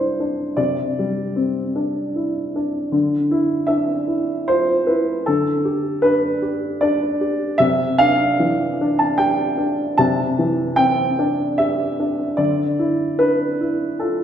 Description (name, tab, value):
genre	neoclassical minimalist piano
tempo	76 BPM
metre	3/4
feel	rubato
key	C major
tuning	A4 = 440 Hz
part	dark upright piano	solo	0.0-14.2 s	C3 to A5	-17 LUFS	equal	none
room	wet recital hall reverb, RT60 1.5 s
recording	recorded in a church or concert hall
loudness	-17 LUFS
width	side -9 dB against mid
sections	0.0-14.2 A section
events	none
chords	0.0 Cadd9; 2.9 Dmadd9; 5.3 G/D; 7.6 Cadd9; 12.4 Dmadd9